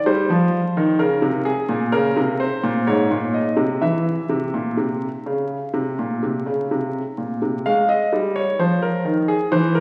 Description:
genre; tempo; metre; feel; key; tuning
classical, baroque-style two-part invention for grand piano; 64 BPM; 4/4; straight; unclear; A4 = 441 Hz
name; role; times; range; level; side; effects
warm concert grand piano; solo; 0.0-9.8 s; Ab2 to F5; -20 LUFS; equal; none
room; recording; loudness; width
wet recital hall reverb, RT60 1.7 s; very old 78 rpm record, vinyl crackle; -21 LUFS; mono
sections
0.0-7.6 A section; 7.6-9.8 B section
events
none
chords
0.1 Gdim (rootless); 3.8 C; 7.6 Fm

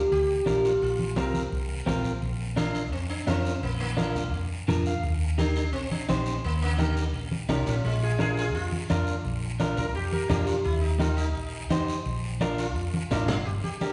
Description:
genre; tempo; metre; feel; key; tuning
latin, cumbia; 171 BPM; 4/4; straight; Bb major; A4 = 439 Hz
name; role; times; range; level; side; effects
sitar; melody; 0.0-13.9 s; Db3 to Bb4; -32 LUFS; equal; none
hollow-body short-scale fingered electric bass; bass; 0.0-13.6 s; G1 to F2; -31 LUFS; equal; none
congas; percussion; 0.1-13.9 s; none; -35 LUFS; equal; none
guiro; percussion; 0.1-13.9 s; none; -44 LUFS; equal; none
electric guitar at the edge of break-up; accompaniment; 0.5-13.9 s; C4 to Bb5; -34 LUFS; equal; none
room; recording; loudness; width
wet recital hall reverb, RT60 1.4 s; recorded in a church or concert hall, vinyl crackle, nothing above 10.7 kHz; -27 LUFS; mono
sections
0.0-2.2 A section; 2.2-13.5 B section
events
sitar solo 2.2-13.5; clean electric guitar fill 4.5-5.0; drum fill 12.9-13.5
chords
0.0 Bb; 0.8 Bbsus2; 2.2 Bb; 5.0 Eb; 7.8 Bb; 10.7 Eb; 12.1 Bb

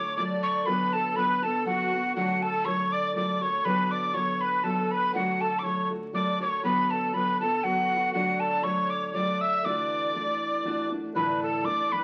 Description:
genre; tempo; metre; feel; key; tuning
celtic folk; 120 BPM; 3/4; swing 53% on 8ths; D major; A4 = 440 Hz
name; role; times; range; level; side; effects
breathy mellow mid whistle; melody; 0.0-12.0 s; F#5 to E6; -29 LUFS; equal; none
musette accordion; second line; 0.0-12.0 s; E4 to E5; -35 LUFS; equal; none
fingerpicked steel-string acoustic guitar; accompaniment; 0.0-12.0 s; A2 to A4; -33 LUFS; equal; none
room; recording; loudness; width
wet studio reverb, RT60 0.8 s; very old 78 rpm record, vinyl crackle; -27 LUFS; mono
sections
0.0-11.2 A section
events
none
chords
0.0 D; 0.7 Bm7/D; 2.2 D; 3.6 Bm7/D; 5.1 D; 6.6 Bm7/D; 8.1 D; 9.6 Dadd9; 11.2 Asus4

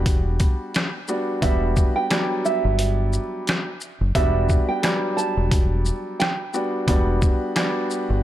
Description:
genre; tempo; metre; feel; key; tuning
hip hop, boom-bap hip-hop; 88 BPM; 4/4; swing 57% on 16ths; E minor; A4 = 440 Hz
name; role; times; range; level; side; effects
dark upright piano; accompaniment; 0.0-8.2 s; F#3 to F#4; -25 LUFS; equal; cassette tape, high-pass filter, low-pass filter
deep dub fingered electric bass; bass; 0.0-8.2 s; E1 to G1; -22 LUFS; equal; none
trip hop sampler-style drum kit; drums; 0.1-8.1 s; hi-hat, kick drum, rim click, shaker, snare drum; -22 LUFS; equal; none
nylon-string guitar; melody; 1.4-6.5 s; E5 to A5; -27 LUFS; right 5 dB; high-pass filter, low-pass filter, ping-pong delay
room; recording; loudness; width
little or no reverb; none; -19 LUFS; side -13 dB against mid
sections
0.0-1.4 A section; 1.4-8.2 A section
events
none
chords
0.0 Em7

